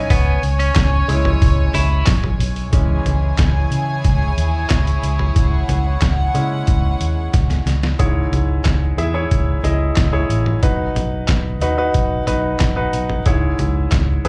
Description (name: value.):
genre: piano-driven pop.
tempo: 91 BPM.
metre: 4/4.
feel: straight.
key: C# minor.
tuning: A4 = 441 Hz.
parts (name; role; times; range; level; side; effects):
bright grand piano; accompaniment; 0.0-14.3 s; G#2 to E5; -26 LUFS; equal; plate reverb, slapback echo.
dark studio string section; sustained chords; 0.0-8.0 s; E4 to G#5; -27 LUFS; equal; plate reverb.
vintage muted fingered electric bass; bass; 0.0-14.3 s; A1 to C#3; -21 LUFS; equal; none.
twelve-string electric guitar; riff; 0.1-2.1 s; B3 to E4; -25 LUFS; equal; slapback echo.
trip hop sampler-style drum kit; drums; 0.1-14.3 s; handclaps, hi-hat, kick drum, snare drum, toms; -21 LUFS; equal; none.
room: light reverb.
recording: live gig heard through the venue's PA, club reverb.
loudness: -17 LUFS.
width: mono.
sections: 0.0-2.7 A section; 2.7-8.0 B section; 8.0-14.3 C section.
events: grand piano solo 0.0-2.7, 2.7-8.0; drum fill 7.3-8.0.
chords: 0.1 C#m; 10.6 B; 13.3 C#m.